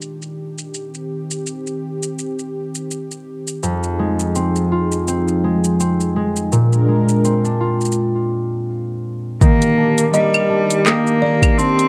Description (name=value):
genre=folktronica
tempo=83 BPM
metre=4/4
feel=swing 56% on 16ths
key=Eb major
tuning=A4 = 442 Hz
part: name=warm analog pad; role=sustained chords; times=0.0-11.9 s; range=Eb3 to Bb4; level=-24 LUFS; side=equal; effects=chorus, plate reverb
part: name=concert harp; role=arpeggios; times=0.0-11.9 s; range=F2 to G4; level=-21 LUFS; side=equal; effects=tape echo, plate reverb
part: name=organic electronic drum kit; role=drums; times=0.0-11.9 s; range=claves, handclaps, hi-hat, shaker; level=-25 LUFS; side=equal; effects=overdrive, low-pass filter on hats, low-pass filter on perc, low-pass filter on snare
part: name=rich cello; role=melody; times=9.4-11.9 s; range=G3 to C4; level=-18 LUFS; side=equal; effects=plate reverb
part: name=electronic kick drum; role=drums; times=9.4-11.6 s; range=none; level=-16 LUFS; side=equal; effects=overdrive
part: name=buzzing kalimba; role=second line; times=10.1-11.6 s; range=D5 to Eb6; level=-22 LUFS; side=equal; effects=tape echo, plate reverb
room=moderate studio ambience, RT60 0.5 s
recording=dark, warm production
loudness=-18 LUFS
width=mono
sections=0.0-9.4 A section; 9.4-11.9 B section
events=break 8.0-9.4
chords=0.0 Ebmaj7; 3.6 Fm7; 6.5 Bb7; 9.4 Ebmaj7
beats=0.02 | 0.74 1.46 2.19 2.91 | 3.63 4.35 5.08 5.80 | 6.52 7.25 7.97 8.69 | 9.41 10.14 10.86 11.58